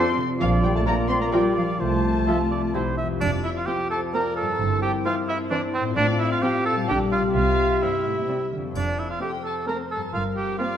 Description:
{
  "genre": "cinematic, playful, whimsical film cue",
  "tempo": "130 BPM",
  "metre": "3/4",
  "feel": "straight",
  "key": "F major",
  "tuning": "A4 = 436 Hz",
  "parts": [
    { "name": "muted chamber violin section", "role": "melody", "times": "0.0-10.8 s", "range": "Bb4 to C6", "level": "-35 LUFS", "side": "left 3 dB", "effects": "none" },
    { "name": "bright clarinet", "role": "second line", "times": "0.0-3.0 s", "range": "E4 to F4", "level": "-30 LUFS", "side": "equal", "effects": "none" },
    { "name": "mellow cor anglais", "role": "second line", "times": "0.0-10.8 s", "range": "C4 to E5", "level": "-26 LUFS", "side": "right 2 dB", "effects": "none" },
    { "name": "muted chamber violin section", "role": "second line", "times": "0.0-10.8 s", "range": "G4 to Bb5", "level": "-34 LUFS", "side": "left 1 dB", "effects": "none" },
    { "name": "silver concert flute", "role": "second line", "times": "0.0-2.7 s", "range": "F5 to C6", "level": "-31 LUFS", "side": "left 2 dB", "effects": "none" },
    { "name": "warm French horn section", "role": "sustained chords", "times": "0.0-10.8 s", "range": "F3 to Bb4", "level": "-28 LUFS", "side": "left 2 dB", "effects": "none" },
    { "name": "concert harp", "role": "arpeggios", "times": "0.0-10.8 s", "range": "F2 to D5", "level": "-30 LUFS", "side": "left 6 dB", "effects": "none" },
    { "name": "muted chamber cello section", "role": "bass", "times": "0.0-10.5 s", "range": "F2 to C4", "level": "-32 LUFS", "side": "right 3 dB", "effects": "none" },
    { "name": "muted chamber double bass section", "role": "bass", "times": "0.4-10.5 s", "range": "F1 to C2", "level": "-28 LUFS", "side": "right 3 dB", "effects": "none" },
    { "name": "muted chamber viola section", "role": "accompaniment", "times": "0.9-10.8 s", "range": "D3 to F4", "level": "-29 LUFS", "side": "right 1 dB", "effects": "none" },
    { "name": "triangle", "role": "percussion", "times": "3.2-4.1, 8.8-9.6 s", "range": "none", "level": "-52 LUFS", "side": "left 1 dB", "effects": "none" }
  ],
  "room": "wet scoring stage reverb, RT60 1.8 s",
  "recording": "dark, warm production",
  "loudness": "-21 LUFS",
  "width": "side -9 dB against mid",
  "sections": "0.0-3.2 A section; 3.2-10.8 B section",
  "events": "none",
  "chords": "0.4 Bb; 1.8 F/C; 2.7 C; 3.2 F; 4.6 C7/G; 6.0 F/A; 6.9 Gm/Bb; 7.4 C; 8.8 F; 10.1 C7(no3)/G"
}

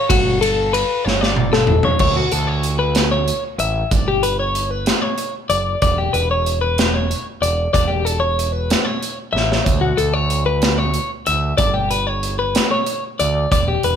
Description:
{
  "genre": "math rock and midwest emo",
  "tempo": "62 BPM (dotted quarters)",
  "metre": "6/8",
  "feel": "straight",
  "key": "D major",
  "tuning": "A4 = 438 Hz",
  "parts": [
    { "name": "twelve-string electric guitar", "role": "arpeggios", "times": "0.0-14.0 s", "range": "F#4 to E5", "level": "-19 LUFS", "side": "left 3 dB", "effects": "none" },
    { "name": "growling picked electric bass", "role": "bass", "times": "0.1-14.0 s", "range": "E1 to D2", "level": "-22 LUFS", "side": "right 2 dB", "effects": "overdrive" },
    { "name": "modern studio drum kit", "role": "drums", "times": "0.1-14.0 s", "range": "crash cymbal, hi-hat, kick drum, ride cymbal, snare drum, toms", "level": "-20 LUFS", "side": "right 1 dB", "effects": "none" }
  ],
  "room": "light reverb",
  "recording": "band playing live in one room",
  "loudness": "-16 LUFS",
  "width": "side -8 dB against mid",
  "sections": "0.0-2.0 A section; 2.0-14.0 B section",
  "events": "drum fill 1.0-2.0, 9.3-9.7",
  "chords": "0.1 Gmaj9#11; 2.0 Dmaj7(no3); 3.9 Gmaj7; 5.8 E7(no3); 7.7 A5/E; 9.7 Dmaj7; 11.6 G"
}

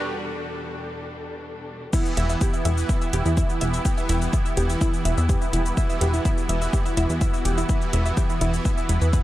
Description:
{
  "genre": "melodic techno",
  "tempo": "125 BPM",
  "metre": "4/4",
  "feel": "straight",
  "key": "E minor",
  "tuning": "A4 = 441 Hz",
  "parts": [
    { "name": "dark symphonic string section", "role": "sustained chords", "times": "0.0-9.2 s", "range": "E2 to A4", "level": "-35 LUFS", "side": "left 2 dB", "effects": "sidechain pumping" },
    { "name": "wide unison pluck", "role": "arpeggios", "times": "1.9-9.2 s", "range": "E4 to E6", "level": "-30 LUFS", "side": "equal", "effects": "sidechain pumping, tape echo" },
    { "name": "brassy analog pad", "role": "stabs", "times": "1.9-9.2 s", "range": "E3 to E4", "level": "-29 LUFS", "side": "right 3 dB", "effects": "analog chorus, sidechain pumping, tape echo" },
    { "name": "electronic kick drum", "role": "drums", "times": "1.9-9.2 s", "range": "none", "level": "-23 LUFS", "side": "equal", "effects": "high-pass filter on kick, small room ambience" },
    { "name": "house drum kit", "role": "drums", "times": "1.9-9.2 s", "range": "crash cymbal, hi-hat, shaker", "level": "-35 LUFS", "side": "left 2 dB", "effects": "small room ambience, sidechain pumping on perc, sidechain pumping on hats, sidechain pumping on cymbals" },
    { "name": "plucky analog bass", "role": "bass", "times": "2.2-9.2 s", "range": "E1 to E2", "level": "-22 LUFS", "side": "equal", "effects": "sidechain pumping" }
  ],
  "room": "little or no reverb",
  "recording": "dry, gritty hardware recording",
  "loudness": "-20 LUFS",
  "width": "side -15 dB against mid",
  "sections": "0.0-1.9 A section; 1.9-9.2 B section",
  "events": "build-up 0.0-1.9; break 0.0-1.9; drop 1.9-9.2",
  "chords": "0.0 Gadd9/E; 1.9 Em"
}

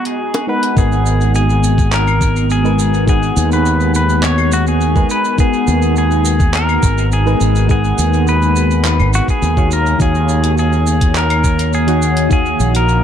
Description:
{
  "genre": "sunset chillout",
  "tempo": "104 BPM",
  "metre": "4/4",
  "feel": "straight",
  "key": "G# dorian",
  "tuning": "A4 = 442 Hz",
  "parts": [
    { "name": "pedal steel guitar", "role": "melody", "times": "0.0-13.0 s", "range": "F#4 to C#5", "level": "-18 LUFS", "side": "left 1 dB", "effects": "tape echo" },
    { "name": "mellow FM electric piano", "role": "accompaniment", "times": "0.0-13.0 s", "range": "D#3 to G#5", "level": "-21 LUFS", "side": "moving between left 5 dB and right 4 dB", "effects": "chorus, auto-pan, tape echo" },
    { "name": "ethereal airy pad", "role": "sustained chords", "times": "0.0-13.0 s", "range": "G#3 to A#5", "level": "-21 LUFS", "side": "equal", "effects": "ensemble chorus, built-in reverb" },
    { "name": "deep house drum kit", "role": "drums", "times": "0.1-13.0 s", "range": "claves, handclaps, hi-hat, shaker", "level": "-24 LUFS", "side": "right 1 dB", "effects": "dub echo" },
    { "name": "bongos", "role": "percussion", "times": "0.3-0.5 s", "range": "none", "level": "-24 LUFS", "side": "left 1 dB", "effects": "dub echo" },
    { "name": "fretless electric bass", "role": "bass", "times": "0.8-13.0 s", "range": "G#1 to D#2", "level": "-14 LUFS", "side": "equal", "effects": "lush chorus" },
    { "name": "electronic kick drum", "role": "drums", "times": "0.8-12.4 s", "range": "none", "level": "-14 LUFS", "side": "equal", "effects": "none" }
  ],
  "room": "light reverb",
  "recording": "echo-heavy mix",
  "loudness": "-11 LUFS",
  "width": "side -9 dB against mid",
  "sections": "0.8-13.0 A section",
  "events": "none",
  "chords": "0.0 G#m7; 9.7 D#m7"
}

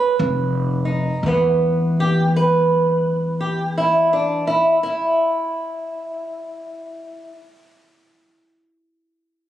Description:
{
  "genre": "acoustic country blues, solo or duo",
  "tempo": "57 BPM",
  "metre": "4/4",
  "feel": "swing 63% on 8ths",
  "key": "unclear",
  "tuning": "A4 = 440 Hz",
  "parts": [
    { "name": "fingerpicked old ladder-braced acoustic guitar", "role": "melody", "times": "0.0-7.3 s", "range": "E2 to B4", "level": "-19 LUFS", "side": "right 2 dB", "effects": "none" },
    { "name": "upright bass", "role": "bass", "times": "0.2-4.6 s", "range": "E#1 to E2", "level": "-21 LUFS", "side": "left 1 dB", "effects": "none" }
  ],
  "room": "light reverb",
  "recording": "recorded on a phone in the room, club reverb",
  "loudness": "-17 LUFS",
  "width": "side -12 dB against mid",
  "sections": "0.0-1.2 A section; 1.2-5.5 B section",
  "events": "slowing down 0.0-1.2; stop 0.0",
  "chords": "0.2 D#sus2/E#; 1.2 E5"
}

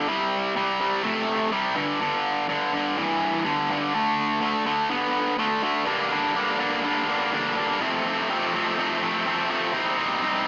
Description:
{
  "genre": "rock",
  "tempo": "124 BPM",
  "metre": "4/4",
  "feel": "straight",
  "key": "G minor from 5.9 s",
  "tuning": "A4 = 440 Hz",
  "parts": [
    { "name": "tight distorted guitar", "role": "solo", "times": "0.0-10.5 s", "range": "F2 to Eb4", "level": "-21 LUFS", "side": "equal", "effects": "distortion" }
  ],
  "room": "wet echo chamber reverb, RT60 1.4 s",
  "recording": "small speaker sound",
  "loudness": "-21 LUFS",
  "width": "side -24 dB against mid",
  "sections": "0.0-5.9 A section; 5.9-10.5 B section",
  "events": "none",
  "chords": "0.1 C5; 1.8 G5; 4.0 D5; 5.9 Gm; 7.8 F; 9.7 Cm"
}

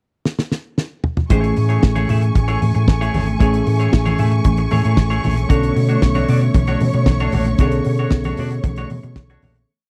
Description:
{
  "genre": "disco",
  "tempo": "114 BPM",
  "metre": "4/4",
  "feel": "straight",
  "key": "A major",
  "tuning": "A4 = 441 Hz",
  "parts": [
    { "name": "damped 70s drum kit", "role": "drums", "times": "0.3-9.7 s", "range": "hi-hat, kick drum, snare drum, toms", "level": "-17 LUFS", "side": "equal", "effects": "none" },
    { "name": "mellow tine electric piano", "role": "accompaniment", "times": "1.3-9.7 s", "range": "D3 to A4", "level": "-25 LUFS", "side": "equal", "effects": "none" },
    { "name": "semi-hollow electric guitar", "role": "accompaniment", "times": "1.3-9.6 s", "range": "A3 to E5", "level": "-29 LUFS", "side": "equal", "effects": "none" },
    { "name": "rich studio string section", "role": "sustained chords", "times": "1.3-9.7 s", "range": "A3 to C#6", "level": "-28 LUFS", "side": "equal", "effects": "none" },
    { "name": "fingered electric bass", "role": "bass", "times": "1.3-9.6 s", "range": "G#1 to B2", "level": "-21 LUFS", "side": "equal", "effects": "none" },
    { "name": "congas", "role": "percussion", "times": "1.3-9.5 s", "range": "none", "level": "-27 LUFS", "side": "equal", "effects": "none" }
  ],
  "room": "studio ambience",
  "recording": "dry, close 1970s-style studio recording",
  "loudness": "-17 LUFS",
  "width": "mono",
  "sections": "0.0-1.3 pickup bar; 1.3-9.7 groove",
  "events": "drum fill 0.3-1.3; fade-out 7.6-9.7",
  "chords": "0.0 N.C.; 1.3 Amaj7; 5.5 Bm9"
}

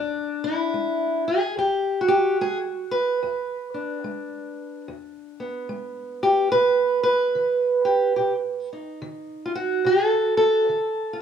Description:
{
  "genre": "acoustic country blues, solo or duo",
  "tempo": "72 BPM",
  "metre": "4/4",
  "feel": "swing 62% on 8ths",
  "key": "E mixolydian",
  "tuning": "A4 = 439 Hz",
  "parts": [
    { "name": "fingerpicked steel-string acoustic guitar", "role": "solo", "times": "0.0-11.2 s", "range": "E2 to B4", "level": "-21 LUFS", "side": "right 1 dB", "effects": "none" }
  ],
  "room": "light reverb",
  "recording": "band playing live in one room",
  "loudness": "-20 LUFS",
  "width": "side -8 dB against mid",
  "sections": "0.0-11.2 A section",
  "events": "none",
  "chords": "0.0 E7; 6.5 B7"
}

